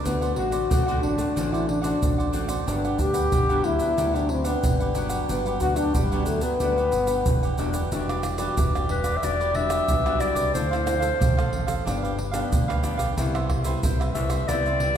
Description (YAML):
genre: samba and choro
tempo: 91 BPM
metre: 4/4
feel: straight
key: G major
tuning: A4 = 441 Hz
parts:
  - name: breathy trombone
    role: melody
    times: 0.0-7.6 s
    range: G3 to G4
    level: -25 LUFS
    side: left 2 dB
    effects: none
  - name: cavaquinho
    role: accompaniment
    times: 0.0-14.9 s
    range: D4 to F#5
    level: -31 LUFS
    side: right 3 dB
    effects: none
  - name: nylon-string guitar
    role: accompaniment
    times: 0.0-15.0 s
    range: G2 to F#4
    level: -31 LUFS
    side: left 4 dB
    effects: none
  - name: fingered electric bass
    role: bass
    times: 0.1-15.0 s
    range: E1 to D2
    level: -29 LUFS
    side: equal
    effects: none
  - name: egg shaker, surdo, pandeiro and tamborim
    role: percussion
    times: 0.1-15.0 s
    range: none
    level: -27 LUFS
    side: right 1 dB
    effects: none
  - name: warm clarinet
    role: second line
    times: 8.9-15.0 s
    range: B4 to E5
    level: -26 LUFS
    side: left 1 dB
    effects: none
room: wet scoring stage reverb, RT60 1.7 s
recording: recorded in a church or concert hall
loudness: -21 LUFS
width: side -9 dB against mid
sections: 0.0-7.9 A section; 7.9-15.0 B section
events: clarinet solo 7.9-15.0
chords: 0.0 D7; 2.7 Gmaj7; 7.9 Em9; 10.5 Dm9; 11.9 G7; 13.2 Cmaj7